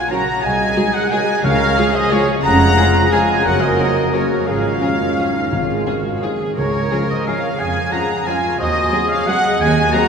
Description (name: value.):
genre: classical, orchestral ballroom waltz.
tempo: 177 BPM.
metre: 3/4.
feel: uneven beats, rubato.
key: Db major.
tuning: A4 = 440 Hz.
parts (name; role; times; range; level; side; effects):
clear oboe; second line; 0.0-10.1 s; Db5 to Bb5; -25 LUFS; equal; none.
mellow silver concert flute; second line; 0.0-10.1 s; Ab4 to Gb5; -25 LUFS; left 3 dB; none.
warm symphonic violin section; second line; 0.0-10.1 s; Db5 to Bb5; -26 LUFS; left 4 dB; none.
warm trumpet section; stabs; 0.0-10.1 s; Db5 to Bb5; -20 LUFS; equal; none.
dark studio cello section; bass; 0.0-10.1 s; Db4 to Bb4; -22 LUFS; right 2 dB; none.
warm symphonic violin section; melody; 0.1-10.0 s; Ab4 to Bb4; -30 LUFS; left 6 dB; none.
dark symphonic viola section; accompaniment; 0.1-10.0 s; Eb3 to Gb4; -27 LUFS; right 1 dB; none.
dark trombone section; sustained chords; 0.1-10.1 s; Db3 to Ab3; -27 LUFS; right 2 dB; none.
mellow French horn section; sustained chords; 0.1-10.1 s; Ab3 to Bb4; -25 LUFS; left 2 dB; none.
rich symphonic double bass section; bass; 0.4-9.9 s; F1 to F2; -22 LUFS; right 2 dB; none.
timpani; percussion; 1.4-1.9, 5.5-7.1 s; Ab2 to Db3; -28 LUFS; left 1 dB; none.
room: wet cathedral reverb, RT60 6.2 s.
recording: none.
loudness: -14 LUFS.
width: side -6 dB against mid.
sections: 0.0-10.1 A section.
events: none.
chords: 0.4 Ab7/C; 1.4 Db; 2.4 Db/F; 3.5 Gb; 4.5 Db/Ab; 5.5 Ab; 6.6 Db; 7.6 Db/F; 8.6 Ab7/Eb.